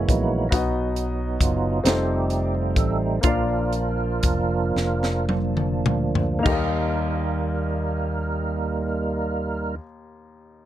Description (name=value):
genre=slow gospel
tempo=33-46 BPM (dotted quarters)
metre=6/8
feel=straight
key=Eb major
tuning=A4 = 440 Hz
part: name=warm upright piano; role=accompaniment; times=0.0-10.7 s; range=Eb2 to D#5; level=-29 LUFS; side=left 4 dB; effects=none
part: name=percussive tonewheel organ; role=sustained chords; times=0.0-9.8 s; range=Fb3 to Bb4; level=-26 LUFS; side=right 4 dB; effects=slow rotary speaker, chorus vibrato
part: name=fingered electric bass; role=bass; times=0.0-9.8 s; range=F1 to Eb2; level=-26 LUFS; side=equal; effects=none
part: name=crisp fusion drum kit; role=drums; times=0.1-6.7 s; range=crash cymbal, hi-hat, kick drum, snare drum, toms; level=-24 LUFS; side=equal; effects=none
room=light reverb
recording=dark, warm production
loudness=-21 LUFS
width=side -12 dB against mid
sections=0.0-6.5 A section; 6.5-10.1 B section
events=tonewheel organ solo 0.0-6.5; slowing down 0.5-6.5; drum fill 4.8-6.5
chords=0.0 Gb7; 0.5 B; 1.8 F7; 3.2 Bb; 6.5 Eb